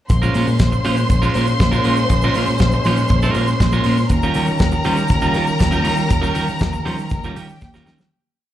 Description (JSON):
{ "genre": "disco", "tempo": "120 BPM", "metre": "4/4", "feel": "straight", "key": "Bb dorian", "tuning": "A4 = 439 Hz", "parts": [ { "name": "warm studio violin section", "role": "second line", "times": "0.1-8.1 s", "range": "G4 to C6", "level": "-22 LUFS", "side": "equal", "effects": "none" }, { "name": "electric guitar at the edge of break-up", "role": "accompaniment", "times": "0.1-8.0 s", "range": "G3 to C5", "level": "-23 LUFS", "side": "right 5 dB", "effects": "warbly pitch drift, slapback echo" }, { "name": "mellow French horn section", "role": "sustained chords", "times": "0.1-8.1 s", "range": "Eb3 to G4", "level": "-27 LUFS", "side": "left 2 dB", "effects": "none" }, { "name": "fingered electric bass", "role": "bass", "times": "0.1-8.1 s", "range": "Bb1 to Eb3", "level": "-19 LUFS", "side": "equal", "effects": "none" }, { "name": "damped 70s drum kit", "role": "drums", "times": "0.1-8.1 s", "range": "hi-hat, kick drum, snare drum", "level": "-19 LUFS", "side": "equal", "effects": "none" }, { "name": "tube shaker", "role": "percussion", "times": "0.1-8.1 s", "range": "none", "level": "-44 LUFS", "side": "left 4 dB", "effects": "none" }, { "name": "congas", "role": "percussion", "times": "0.4-7.9 s", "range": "none", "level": "-29 LUFS", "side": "left 5 dB", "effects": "none" } ], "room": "small room ambience", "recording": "live gig heard through the venue's PA, club reverb", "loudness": "-15 LUFS", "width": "side -12 dB against mid", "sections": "0.1-8.1 groove", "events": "fade-out 6.1-8.1; drum fill 7.6-8.1", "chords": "0.1 Bbm7; 4.1 Eb9", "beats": "| 0.10 0.60 1.10 1.60 | 2.10 2.60 3.10 3.60 | 4.11 4.61 5.11 5.61 | 6.11 6.61 7.12 7.62" }